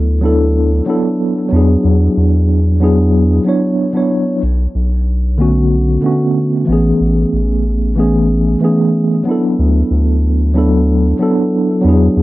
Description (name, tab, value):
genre	sunset chillout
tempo	93 BPM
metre	4/4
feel	straight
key	unclear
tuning	A4 = 440 Hz
part	mellow tine electric piano	accompaniment	0.0-12.2 s	D3 to C#5	-13 LUFS	equal	medium stereo tremolo, auto-pan, cassette tape, tape echo
part	round analog bass	bass	0.0-12.2 s	A1 to E2	-13 LUFS	equal	none
room	wet booth ambience, RT60 0.2 s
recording	home recording on cassette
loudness	-11 LUFS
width	side -17 dB against mid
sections	0.0-12.2 A section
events	none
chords	0.0 D69; 1.5 E7; 4.4 Amaj9; 9.6 D69